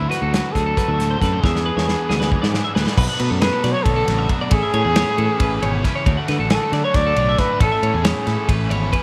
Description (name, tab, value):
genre	math rock and midwest emo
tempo	272 BPM (eighths)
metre	7/8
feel	straight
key	A major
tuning	A4 = 440 Hz
part	breathy trumpet	melody	0.0-8.5 s	E4 to D5	-25 LUFS	equal	none
part	twelve-string electric guitar	accompaniment	0.0-9.0 s	E2 to F#4	-31 LUFS	equal	none
part	twelve-string electric guitar	arpeggios	0.0-9.0 s	G#4 to F#5	-28 LUFS	equal	none
part	overdriven electric guitar	riff	0.0-9.0 s	A2 to C5	-31 LUFS	equal	none
part	growling fingered electric bass	bass	0.0-8.9 s	G#1 to D3	-24 LUFS	equal	overdrive
part	modern studio drum kit	drums	0.1-9.0 s	crash cymbal, hi-hat, kick drum, ride cymbal, snare drum	-24 LUFS	equal	none
room	moderate spring reverb, RT60 1.6 s, studio reverb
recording	none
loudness	-19 LUFS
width	mono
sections	0.0-3.0 A section; 3.0-9.0 B section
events	drum fill 1.4-3.0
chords	0.0 D9; 1.4 E13; 3.0 Bm9; 4.5 Amaj7; 6.1 Dmaj9; 7.6 Amaj7